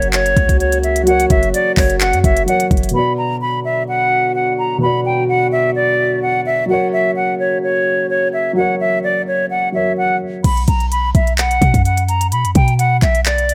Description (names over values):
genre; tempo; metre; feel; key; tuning
hip hop, trap; 128 BPM; 4/4; half-time; B harmonic minor; A4 = 440 Hz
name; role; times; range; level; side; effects
hollow concert flute; melody; 0.0-13.5 s; C#5 to B5; -19 LUFS; equal; digital delay
dark concert grand piano; accompaniment; 0.0-10.5 s; B2 to D5; -23 LUFS; equal; none
clear French horn section; sustained chords; 0.0-10.4 s; C#3 to F#4; -25 LUFS; equal; none
clean 808-style bass; bass; 0.0-2.9, 10.4-13.5 s; F#1 to B2; -20 LUFS; equal; none
trap drum kit; drums; 0.0-2.9, 10.4-13.5 s; crash cymbal, handclaps, hi-hat, kick drum; -19 LUFS; equal; none
room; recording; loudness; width
light reverb, studio ambience; none; -15 LUFS; mono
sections
0.0-2.9 A section; 2.9-10.4 B section; 10.4-13.5 C section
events
none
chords
0.0 F#; 2.9 Bm; 6.7 F#; 10.4 B5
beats
0.13 0.60 | 1.07 1.54 2.01 2.48 | 2.94 3.41 3.88 4.35 | 4.82 5.29 5.76 6.23 | 6.69 7.16 7.63 8.10 | 8.57 9.04 9.51 9.98 | 10.44 10.91 11.38 11.85 | 12.32 12.79 13.26